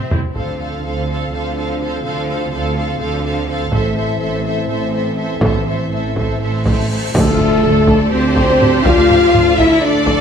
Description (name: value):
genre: cinematic, epic orchestral film score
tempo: 248 BPM (eighths)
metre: 7/8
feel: straight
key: D minor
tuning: A4 = 437 Hz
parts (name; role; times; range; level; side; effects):
- warm symphonic violin section; melody; 0.0-10.2 s; A4 to F5; -26 LUFS; left 4 dB; none
- warm symphonic violin section; second line; 0.0-10.2 s; G4 to F5; -24 LUFS; left 3 dB; none
- clear symphonic viola section; accompaniment; 0.0-10.2 s; C4 to A4; -24 LUFS; right 2 dB; none
- mellow French horn section; sustained chords; 0.0-10.2 s; E3 to F4; -18 LUFS; left 3 dB; none
- rich symphonic cello section; bass; 0.1-10.2 s; A2 to F4; -22 LUFS; right 3 dB; none
- warm symphonic double bass section; bass; 0.1-10.2 s; A1 to D2; -23 LUFS; right 3 dB; none
- taiko ensemble; drums; 0.1-10.2 s; none; -18 LUFS; equal; none
- cymbal swell and impact; sound effects; 6.6-8.9 s; none; -26 LUFS; right 1 dB; none
- silver concert flute; second line; 7.1-10.2 s; A4 to F5; -24 LUFS; equal; none
- rich symphonic string section; sustained chords; 7.1-10.2 s; F4 to D5; -24 LUFS; equal; none
- mellow tuba; bass; 7.2-10.2 s; D2; -22 LUFS; right 4 dB; none
room: moderate scoring stage reverb, RT60 1.5 s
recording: none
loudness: -13 LUFS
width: side -7 dB against mid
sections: 0.4-7.2 A section; 7.2-10.2 B section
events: drum fill 0.0-0.4; cymbal swell 6.6-7.2; impact 7.2-8.9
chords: 0.4 Dm7; 3.7 Am; 7.2 Dm7